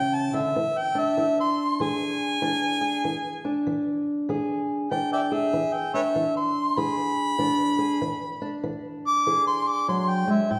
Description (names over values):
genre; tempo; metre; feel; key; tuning
acoustic country blues, solo or duo; 97 BPM; 4/4; swing 63% on 8ths; unclear; A4 = 436 Hz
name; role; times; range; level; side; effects
warm harmonica; melody; 0.0-10.6 s; B4 to D6; -27 LUFS; equal; none
fingerpicked old ladder-braced acoustic guitar; accompaniment; 0.0-10.6 s; A2 to G#4; -29 LUFS; equal; none
room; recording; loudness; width
wet recital hall reverb, RT60 1.5 s; recorded in a church or concert hall; -25 LUFS; mono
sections
0.0-10.6 A section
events
harmonica solo 0.0-10.6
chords
0.0 A; 0.6 E7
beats
| 0.57 1.19 1.81 2.43 | 3.05 3.67 4.29 4.91 | 5.53 6.15 6.78 7.40 | 8.02 8.64 9.26 9.89 | 10.51